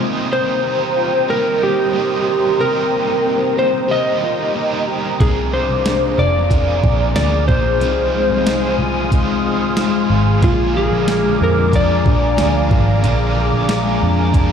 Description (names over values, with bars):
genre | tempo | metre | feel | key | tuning
dream pop | 92 BPM | 4/4 | straight | unclear | A4 = 439 Hz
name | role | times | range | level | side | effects
overdriven electric guitar | accompaniment | 0.0-14.5 s | Bb2 to Ab4 | -23 LUFS | right 6 dB | tremolo, lush chorus
phased analog pad | sustained chords | 0.0-14.5 s | Ab4 to Eb6 | -23 LUFS | equal | phaser, chorus
mellow electric guitar | arpeggios | 0.0-14.5 s | Bb2 to Ab4 | -22 LUFS | left 5 dB | lush chorus, ping-pong delay
electric slide guitar | melody | 0.3-14.5 s | F4 to Eb5 | -19 LUFS | left 1 dB | ping-pong delay
vintage muted picked electric bass | bass | 5.2-14.5 s | F1 to F2 | -19 LUFS | equal | none
crisp 8-bit digital drum machine | drums | 5.2-14.5 s | hi-hat, kick drum, snare drum | -17 LUFS | equal | none
room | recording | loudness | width
light reverb, digital ambience | played on a big sound system in a bare room, large studio reverb | -14 LUFS | side -7 dB against mid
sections
0.0-14.5 A section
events
none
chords
0.0 Cm7; 5.2 Bb7; 7.8 Fm7/C; 10.4 Bb7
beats
0.64 1.29 1.95 | 2.60 3.25 3.90 4.55 | 5.21 5.86 6.51 7.16 | 7.82 8.47 9.12 9.77 | 10.43 11.08 11.73 12.38 | 13.03 13.69 14.34